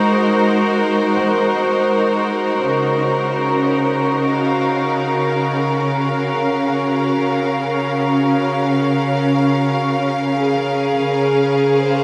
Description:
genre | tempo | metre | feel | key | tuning
ambient | free time | none | none | unclear | A4 = 442 Hz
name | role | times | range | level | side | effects
bright symphonic string section | sustained chords | 0.0-12.0 s | Db3 to F5 | -17 LUFS | equal | shimmer reverb
felt-muted upright piano | arpeggios | 0.0-3.0 s | F5 to Gb5 | -40 LUFS | equal | none
room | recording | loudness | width
wet cathedral reverb, RT60 4.7 s | in a vast, echoing space | -17 LUFS | mono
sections
0.0-2.6 A section; 2.6-12.0 B section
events
none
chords
0.0 Ab7; 2.6 Ebm9/Db; 10.0 Bbm7/Db

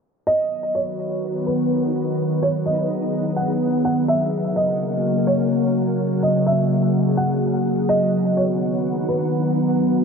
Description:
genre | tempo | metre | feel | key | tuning
hip hop | 126 BPM | 4/4 | half-time | B major | A4 = 440 Hz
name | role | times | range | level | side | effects
felt-muted upright piano | melody | 0.3-9.8 s | B4 to F#5 | -23 LUFS | right 1 dB | ping-pong delay
glassy FM pad | sustained chords | 0.7-10.0 s | C#3 to C#5 | -20 LUFS | equal | ensemble chorus, built-in reverb
twinkling granular texture | texture | 1.3-10.0 s | C#4 to F#5 | -33 LUFS | right 1 dB | built-in reverb
room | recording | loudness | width
wet lush hall reverb, RT60 2.6 s | dark, warm production, low-pass filter | -18 LUFS | side -6 dB against mid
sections
0.3-10.0 A section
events
none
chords
0.3 B; 4.1 F#; 7.9 B

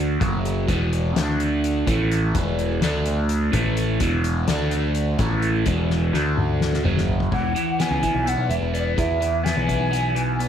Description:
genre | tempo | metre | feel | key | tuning
psychedelic rock | 253 BPM (eighths) | 7/8 | straight | E mixolydian | A4 = 441 Hz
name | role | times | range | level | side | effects
crunchy overdriven guitar | riff | 0.0-10.5 s | E2 to E4 | -23 LUFS | right 1 dB | phaser
picked electric bass | bass | 0.0-10.5 s | E1 to E2 | -24 LUFS | equal | none
soft-mallet drum kit | drums | 0.2-10.5 s | crash cymbal, hi-hat, kick drum, snare drum, toms | -27 LUFS | left 3 dB | none
breathy mellow jazz flute | melody | 7.3-10.4 s | D5 to G#5 | -25 LUFS | equal | slapback echo
room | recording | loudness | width
studio ambience | 1960s-style stereo | -19 LUFS | side -9 dB against mid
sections
0.0-7.3 A section; 7.3-10.5 B section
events
drum fill 5.9-7.3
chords
0.2 F#5; 0.7 E5; 1.2 D5; 1.9 A5; 2.3 E5; 2.8 D5; 3.5 A5; 4.0 E5; 4.5 D5; 5.2 A5; 5.7 E5; 6.1 D5; 6.8 F#5; 7.3 E

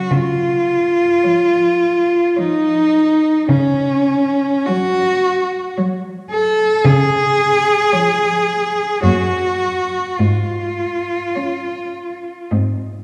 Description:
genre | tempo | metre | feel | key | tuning
classical, lyrical piece for cello ensemble | 54 BPM | 3/4 | uneven beats, rubato | Db major | A4 = 438 Hz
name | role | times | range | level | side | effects
rich cello | second line | 0.0-12.5 s | Db4 to A4 | -17 LUFS | equal | none
rich cello | accompaniment | 0.0-13.0 s | F3 to Db4 | -28 LUFS | equal | none
warm cello | bass | 0.1-13.0 s | Gb2 to Db3 | -20 LUFS | equal | none
rich cello | melody | 1.2-13.0 s | Db5 to Eb5 | -34 LUFS | equal | none
room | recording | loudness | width
wet scoring stage reverb, RT60 1.8 s | heard from further back in the room | -16 LUFS | mono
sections
0.1-13.0 A section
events
none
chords
0.1 Db; 3.5 Gb5/Db; 6.8 Db; 9.0 Gb; 10.2 Db/Ab; 12.5 Ab

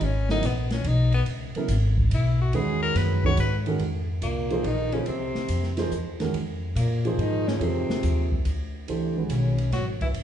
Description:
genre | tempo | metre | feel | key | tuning
modal jazz | 142 BPM | 3/4 | swing 68% on 8ths | unclear | A4 = 440 Hz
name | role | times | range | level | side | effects
breathy tenor saxophone | melody | 0.0-10.1 s | Bb3 to Db5 | -31 LUFS | left 4 dB | none
upright bass | bass | 0.0-10.2 s | Ab1 to Bb2 | -25 LUFS | left 1 dB | none
open jazz drum kit | drums | 0.0-10.2 s | hi-hat, kick drum, ride cymbal, snare drum | -33 LUFS | equal | none
dark baby grand piano | accompaniment | 0.3-9.5 s | Db3 to C5 | -29 LUFS | right 3 dB | none
breathy tenor saxophone | second line | 4.2-10.1 s | Bb2 to Gb3 | -33 LUFS | right 2 dB | none
room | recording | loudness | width
moderate large studio reverb, RT60 1.4 s | band playing live in one room, nothing above 10.5 kHz | -22 LUFS | side -10 dB against mid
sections
0.0-3.8 A section; 3.8-10.2 B section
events
tenor saxophone solo 0.0-3.8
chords
0.0 Dbm11; 3.8 Bb9sus4; 8.9 Dbm11

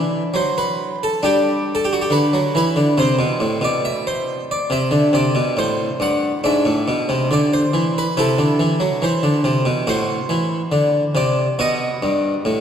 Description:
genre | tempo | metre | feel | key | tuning
classical, baroque-style suite movement for harpsichord | 69 BPM | 4/4 | rubato | unclear | A4 = 441 Hz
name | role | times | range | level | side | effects
harpsichord | solo | 0.0-12.6 s | G2 to F#5 | -16 LUFS | equal | none
room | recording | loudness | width
wet church reverb, RT60 3.1 s | none | -16 LUFS | side -8 dB against mid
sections
0.0-12.6 A section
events
none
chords
0.0 D; 1.2 G5; 3.0 Am; 6.4 E7/G#; 8.2 Am/C; 9.9 F#dim/A; 11.6 B

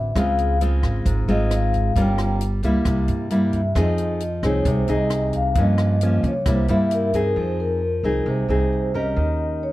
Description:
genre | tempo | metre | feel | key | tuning
bossa nova | 133 BPM | 4/4 | straight | F minor | A4 = 439 Hz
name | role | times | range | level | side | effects
vibraphone with soft mallets | melody | 0.0-9.7 s | Bb4 to G5 | -25 LUFS | left 2 dB | none
nylon-string guitar | accompaniment | 0.0-9.7 s | G2 to B4 | -23 LUFS | equal | none
upright bass | bass | 0.0-9.7 s | G1 to Db3 | -22 LUFS | right 1 dB | none
compact cocktail drum kit | drums | 0.2-7.2 s | hi-hat, kick drum, rim click | -27 LUFS | equal | none
room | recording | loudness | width
light reverb | none | -18 LUFS | side -16 dB against mid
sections
0.0-7.4 A section; 7.4-9.7 B section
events
vibraphone solo 0.0-7.4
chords
0.2 Dbmaj7; 2.0 Gm7b5; 2.9 C7; 3.8 Fm7; 5.6 Gm7b5; 6.5 C7; 7.4 Fm7; 9.2 Eb7

